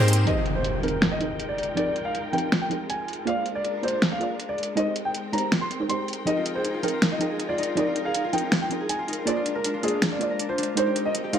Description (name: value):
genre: future bass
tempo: 160 BPM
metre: 4/4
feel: half-time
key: F dorian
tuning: A4 = 440 Hz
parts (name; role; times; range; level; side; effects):
- dark concert grand piano; melody; 0.0-11.4 s; C4 to C6; -28 LUFS; equal; ping-pong delay
- dark symphonic string section; sustained chords; 0.0-11.4 s; C3 to G5; -34 LUFS; left 2 dB; low-pass filter
- concert harp; arpeggios; 0.0-2.6, 6.3-11.4 s; D4 to F5; -33 LUFS; left 2 dB; dub echo
- pop drum kit; drums; 0.1-11.4 s; finger snaps, hi-hat, snare drum; -26 LUFS; equal; overdrive, low-pass filter on hats, low-pass filter on snare, low-pass filter on room
- soft round pluck; accompaniment; 0.2-11.4 s; F3 to G5; -30 LUFS; right 2 dB; ensemble chorus
- impact; sound effects; 0.3-1.8 s; none; -30 LUFS; equal; none
room: moderate digital room reverb, RT60 1.2 s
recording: none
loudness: -23 LUFS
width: side -8 dB against mid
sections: 0.3-11.4 A section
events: impact 0.3-1.8; filter sweep on string section 0.3-11.4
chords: 0.3 Fm11; 3.3 Bb7; 4.8 Abmaj9; 6.3 Fm11; 9.3 Bb7; 10.8 Abmaj9